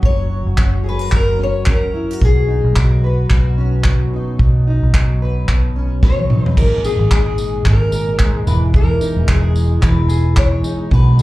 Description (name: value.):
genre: acoustic pop.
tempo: 110 BPM.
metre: 4/4.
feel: swing 60% on 16ths.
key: unclear.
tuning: A4 = 441 Hz.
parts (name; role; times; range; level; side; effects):
fingerpicked steel-string acoustic guitar; melody; 0.0-11.2 s; F#4 to C#5; -23 LUFS; left 2 dB; plate reverb, slapback echo.
fingerpicked plugged-in steel-string acoustic guitar; accompaniment; 0.0-11.2 s; G#2 to B4; -21 LUFS; right 1 dB; double-tracked left and right.
vintage muted fingered electric bass; bass; 0.0-11.2 s; E1 to B1; -16 LUFS; equal; none.
modern studio drum kit; drums; 0.0-11.2 s; crash cymbal, handclaps, kick drum, snare drum, tambourine, toms; -16 LUFS; equal; none.
mellow tonewheel organ; sustained chords; 6.6-11.2 s; A#2 to G#4; -28 LUFS; right 1 dB; overdrive, chorus vibrato, fast rotary speaker, plate reverb.
room: light reverb.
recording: live gig heard through the venue's PA, club reverb.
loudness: -13 LUFS.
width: side -18 dB against mid.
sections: 0.0-6.6 A section; 6.6-11.2 B section.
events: drum fill 6.0-6.6.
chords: 0.0 F#; 2.2 Badd9; 6.6 G#sus2; 8.5 Emaj7.